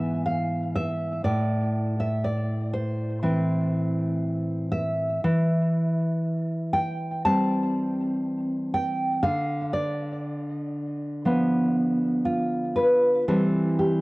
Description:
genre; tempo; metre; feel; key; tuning
romantic piece for solo classical guitar; 60 BPM; 4/4; rubato; A minor, C major from 5.2 s; A4 = 440 Hz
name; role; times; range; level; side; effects
nylon-string guitar; solo; 0.0-14.0 s; G#2 to A5; -23 LUFS; equal; cassette tape
room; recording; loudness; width
moderate spring reverb, RT60 1.2 s, studio reverb; home recording on cassette; -23 LUFS; side -22 dB against mid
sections
0.0-14.0 A section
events
none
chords
0.0 E/G#; 1.3 Am; 5.2 C/E; 9.2 Bdim/D; 13.3 C/E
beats
0.30 | 1.28 2.26 3.23 4.22 | 5.23 6.23 7.25 8.26 | 9.24 10.26 11.26 12.26 | 13.29

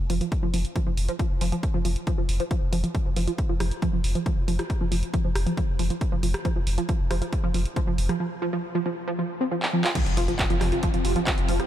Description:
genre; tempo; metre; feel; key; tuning
driving peak-time techno; 137 BPM; 4/4; straight; unclear; A4 = 440 Hz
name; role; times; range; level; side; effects
saturated sub bass; bass; 0.0-11.6 s; F1; -27 LUFS; equal; tube saturation, sidechain pumping, low-pass filter
tight sequenced synth; riff; 0.1-11.6 s; F3 to F4; -28 LUFS; right 1 dB; chorus, phaser, overdrive, sidechain pumping, ping-pong delay
punchy analog drum machine; drums; 0.1-11.7 s; crash cymbal, handclaps, hi-hat, rim click; -32 LUFS; equal; none
electronic kick drum; drums; 0.3-11.4 s; none; -26 LUFS; equal; overdrive
swarming drone; drone; 10.2-11.7 s; F3 to C4; -33 LUFS; left 2 dB; built-in reverb, sidechain pumping
impact; sound effects; 10.0-11.7 s; none; -33 LUFS; equal; none
filtered dub chord stab; stabs; 10.6-11.6 s; C3 to F4; -29 LUFS; right 1 dB; phaser, analog chorus, sidechain pumping, ping-pong delay
room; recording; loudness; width
light reverb; none; -23 LUFS; side -12 dB against mid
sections
0.0-10.0 A section; 10.0-11.7 B section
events
filter sweep on synth arpeggio sound 0.0-10.0; drum fill 9.6-10.0; drop 10.0-11.7; impact 10.0-11.7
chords
0.0 F5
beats
0.32 0.76 | 1.19 1.63 2.07 2.51 | 2.95 3.38 3.82 4.26 | 4.70 5.14 5.57 6.01 | 6.45 6.89 7.33 7.76 | 8.20 8.64 9.08 9.52 | 9.95 10.39 10.83 11.27

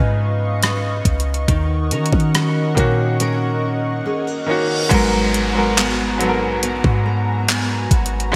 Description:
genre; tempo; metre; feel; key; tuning
contemporary R&B; 70 BPM; 4/4; straight; G# dorian; A4 = 439 Hz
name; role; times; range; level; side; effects
bright baby grand piano; accompaniment; 0.0-8.4 s; G#2 to A#4; -24 LUFS; equal; none
chorused pulse-width pad; sustained chords; 0.0-8.4 s; F#4 to C#6; -29 LUFS; equal; sidechain pumping
nylon-string guitar; arpeggios; 0.0-8.4 s; D#3 to D#5; -26 LUFS; equal; ensemble chorus, digital delay
clean 808-style bass; bass; 0.0-8.3 s; G#1 to D#3; -23 LUFS; equal; none
gated 80s digital drum machine; drums; 0.6-8.3 s; crash cymbal, handclaps, hi-hat, kick drum, rim click; -22 LUFS; equal; gated reverb, overdrive
reverse cymbal and downlifter; sound effects; 4.3-8.4 s; none; -31 LUFS; equal; none
room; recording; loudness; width
moderate lush hall reverb, RT60 2.7 s; bright 1980s-style digital production; -18 LUFS; mono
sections
0.0-4.9 A section; 4.9-8.4 B section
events
drums muted 4.1-4.9; reverse cymbal 4.3-4.9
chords
0.0 C#9; 1.5 D#m7; 4.9 G#m9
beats
0.63 | 1.48 2.34 3.20 4.06 | 4.91 5.77 6.63 7.48 | 8.34

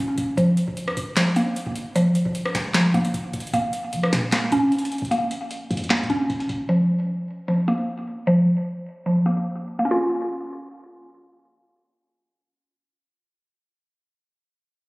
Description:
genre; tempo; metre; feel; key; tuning
hip hop, trap; 152 BPM; 4/4; half-time; Bb minor; A4 = 440 Hz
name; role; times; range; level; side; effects
mallet-like synth pluck; arpeggios; 0.0-13.6 s; F3 to F4; -21 LUFS; equal; chorus, phaser, digital delay
clean 808-style bass; bass; 0.0-6.7 s; F1 to F3; -31 LUFS; equal; none
booming analog drum machine; drums; 0.2-6.7 s; handclaps, hi-hat, kick drum, rim click, snare drum; -26 LUFS; equal; overdrive
room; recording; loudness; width
moderate lush hall reverb, RT60 2.1 s; recorded on a phone in the room, studio reverb, low-pass filter; -20 LUFS; side -23 dB against mid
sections
0.0-3.5 A section; 3.5-9.9 B section; 9.9-13.0 C section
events
filter sweep 3.5-9.9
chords
0.4 Fsus4; 3.5 Bbm; 6.7 Fsus4; 9.9 Bbm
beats
| 0.38 0.77 1.17 1.56 | 1.96 2.35 2.75 3.14 | 3.54 3.93 4.32 4.72 | 5.11 5.51 5.90 6.30 | 6.69 7.09 7.48 7.88 | 8.27 8.67 9.06 9.46 | 9.85 10.24 10.64 11.04 | 11.43 11.82 12.22 12.61

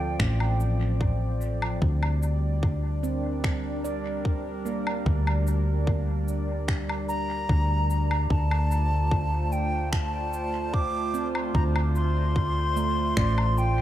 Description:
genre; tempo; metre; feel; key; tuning
ambient dub; 74 BPM; 4/4; straight; D minor; A4 = 440 Hz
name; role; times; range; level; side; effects
bright wooden flute; melody; 0.0-0.6, 7.1-13.8 s; G5 to D6; -30 LUFS; equal; dub echo
warbly tape-like pad; sustained chords; 0.0-13.8 s; F3 to D5; -32 LUFS; equal; chorus, built-in reverb
hollow-body short-scale fingered electric bass; bass; 0.0-13.8 s; A1 to D2; -26 LUFS; equal; none
electronic finger snaps, woodblock and cabasa; drums; 0.2-13.7 s; none; -35 LUFS; left 1 dB; dub echo
electronic kick drum; drums; 0.2-13.3 s; none; -27 LUFS; equal; none
handpan; arpeggios; 3.0-13.8 s; A3 to D5; -36 LUFS; right 9 dB; dub echo
room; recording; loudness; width
light reverb, digital ambience; none; -23 LUFS; side -12 dB against mid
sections
0.0-13.8 A section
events
none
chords
0.0 Dm7; 1.8 Gm/D; 8.3 Dm7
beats
0.20 1.01 | 1.82 2.63 3.44 4.25 | 5.06 5.87 6.68 7.49 | 8.30 9.12 9.93 10.74 | 11.55 12.36 13.17

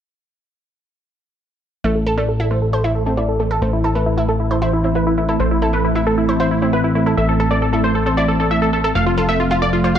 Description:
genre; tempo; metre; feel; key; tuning
uplifting trance; 135 BPM; 4/4; straight; A minor; A4 = 440 Hz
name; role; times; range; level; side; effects
supersaw stab; melody; 1.8-10.0 s; E4 to F5; -20 LUFS; equal; low-pass filter, diffuse ambient delay
analog string pad; sustained chords; 1.8-10.0 s; E3 to C4; -21 LUFS; right 1 dB; ensemble chorus
analog pluck; arpeggios; 1.8-10.0 s; A3 to C5; -23 LUFS; right 2 dB; chorus, cassette tape, diffuse ambient delay
fat analog bass; bass; 1.8-10.0 s; F1 to A1; -20 LUFS; left 1 dB; none
electronic hi-hat; drums; 1.8-9.9 s; none; barely audible; none; none
room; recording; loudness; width
moderate plate reverb, RT60 1.9 s; dreamy mix soaked in reverb; -15 LUFS; side -9 dB against mid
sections
1.8-10.0 A section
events
filter sweep on supersaw synth 1.8-10.0; filter sweep on analog synth pad 1.8-10.0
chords
1.8 Am; 9.0 F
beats
| 1.84 2.29 2.73 3.18 | 3.62 4.07 4.51 4.96 | 5.40 5.84 6.29 6.73 | 7.18 7.62 8.07 8.51 | 8.96 9.40 9.84

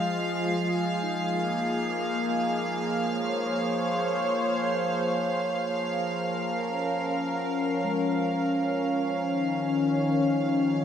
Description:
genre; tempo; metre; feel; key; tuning
ambient; free time; none; none; unclear; A4 = 440 Hz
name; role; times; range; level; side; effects
warm analog pad; sustained chords; 0.0-10.8 s; Eb3 to Eb5; -26 LUFS; left 1 dB; wide subtle chorus
muted felt-like synth keys; arpeggios; 0.0-10.8 s; Ab3 to G5; -42 LUFS; right 1 dB; none
overtone-sweeping drone; drone; 0.0-10.8 s; F3; -34 LUFS; right 2 dB; chorus, built-in reverb
rich studio violin section; texture; 0.0-10.8 s; F5; -32 LUFS; equal; none
room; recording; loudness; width
wet huge ambient reverb, RT60 7.7 s; none; -25 LUFS; side -8 dB against mid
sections
0.0-10.8 A section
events
none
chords
0.0 Fm7; 1.2 Bbm9; 5.2 Gbmaj7; 9.2 Eb7(no3)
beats
free time

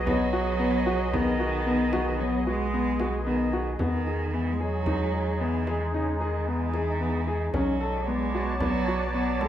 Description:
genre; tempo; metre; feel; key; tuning
contemporary instrumental, chamber music in an uneven meter; 112 BPM; 7/4; straight; E major; A4 = 440 Hz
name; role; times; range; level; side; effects
warm cello; second line; 0.0-9.5 s; C#3 to G#3; -30 LUFS; right 6 dB; none
evolving wavetable pad; sustained chords; 0.0-9.5 s; G#3 to A5; -32 LUFS; equal; ensemble chorus, built-in reverb
punchy sub bass; bass; 0.0-9.5 s; B1 to E2; -31 LUFS; left 1 dB; none
warm concert grand piano; arpeggios; 0.1-9.5 s; B3 to A4; -28 LUFS; left 2 dB; none
frame drum; percussion; 0.1-9.5 s; none; -34 LUFS; right 1 dB; none
room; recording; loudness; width
moderate recital hall reverb, RT60 1.5 s; none; -24 LUFS; side -11 dB against mid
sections
0.0-3.8 A section; 3.8-9.5 B section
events
none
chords
0.0 B6; 3.8 Emaj7; 7.5 Bm9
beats
| 0.07 0.60 1.14 1.67 2.20 2.73 3.27 | 3.80 4.33 4.87 5.40 5.93 6.47 7.00 | 7.54 8.07 8.61 9.14

